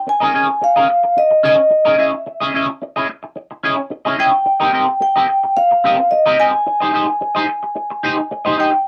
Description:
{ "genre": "disco", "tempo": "109 BPM", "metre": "4/4", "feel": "straight", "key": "Ab major", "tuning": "A4 = 440 Hz", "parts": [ { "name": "vibraphone with medium mallets", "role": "melody", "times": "0.1-8.9 s", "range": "Eb5 to Ab5", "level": "-16 LUFS", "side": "equal", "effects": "none" }, { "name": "electric guitar at the edge of break-up", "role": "accompaniment", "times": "0.1-8.8 s", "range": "C4 to Eb5", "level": "-21 LUFS", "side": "equal", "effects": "wah, lush chorus" } ], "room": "light reverb", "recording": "dry, close 1970s-style studio recording", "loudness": "-16 LUFS", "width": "mono", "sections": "0.0-8.9 A section", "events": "none", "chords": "0.1 Eb7sus4; 2.0 Dbmadd9; 4.5 Cm7; 6.7 Abmaj7" }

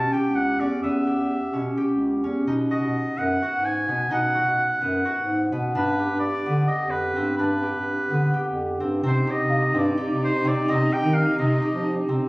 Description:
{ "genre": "contemporary instrumental, chamber music in an uneven meter", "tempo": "256 BPM (eighths)", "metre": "7/8", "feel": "straight", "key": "C minor from 9.0 s", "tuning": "A4 = 440 Hz", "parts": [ { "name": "clear oboe", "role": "melody", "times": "0.0-12.1 s", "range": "B4 to A5", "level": "-26 LUFS", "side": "right 1 dB", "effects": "none" }, { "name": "concert harp", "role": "arpeggios", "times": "0.0-12.3 s", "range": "B3 to G4", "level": "-25 LUFS", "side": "equal", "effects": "none" }, { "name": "mellow bass clarinet", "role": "bass", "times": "0.0-12.2 s", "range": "Db2 to F3", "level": "-26 LUFS", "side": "equal", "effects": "none" }, { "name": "dark cello", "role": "second line", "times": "9.1-12.3 s", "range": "Eb4", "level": "-28 LUFS", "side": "equal", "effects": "none" }, { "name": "celesta", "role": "texture", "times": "9.5-10.9 s", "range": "F5", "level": "-35 LUFS", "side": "left 2 dB", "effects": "none" } ], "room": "moderate recital hall reverb, RT60 1.6 s", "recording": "recorded on a phone in the room, studio reverb, compression", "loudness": "-21 LUFS", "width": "side -23 dB against mid", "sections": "0.0-9.0 A section; 9.0-12.3 B section", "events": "none", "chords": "0.0 Em; 2.5 B; 5.8 G; 9.0 Cm" }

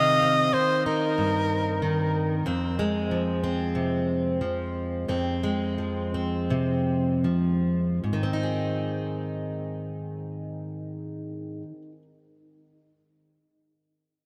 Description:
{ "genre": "indie folk with a building arrangement", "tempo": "75-94 BPM", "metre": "4/4", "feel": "straight", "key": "Ab major", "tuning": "A4 = 439 Hz", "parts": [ { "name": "clear soprano saxophone", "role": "melody", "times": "0.0-2.1 s", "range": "Bb4 to Eb5", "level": "-26 LUFS", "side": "equal", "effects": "tape echo" }, { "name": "fingerpicked plugged-in steel-string acoustic guitar", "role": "accompaniment", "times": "0.0-12.0 s", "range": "F2 to Ab4", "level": "-28 LUFS", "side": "equal", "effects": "lush chorus" } ], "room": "moderate huge ambient reverb, RT60 4.0 s", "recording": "dreamy mix soaked in reverb", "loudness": "-27 LUFS", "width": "mono", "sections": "0.0-8.0 A section; 8.0-11.2 B section", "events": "slowing down 2.5-8.0", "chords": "0.0 Cm; 2.5 Fm; 8.0 Ab" }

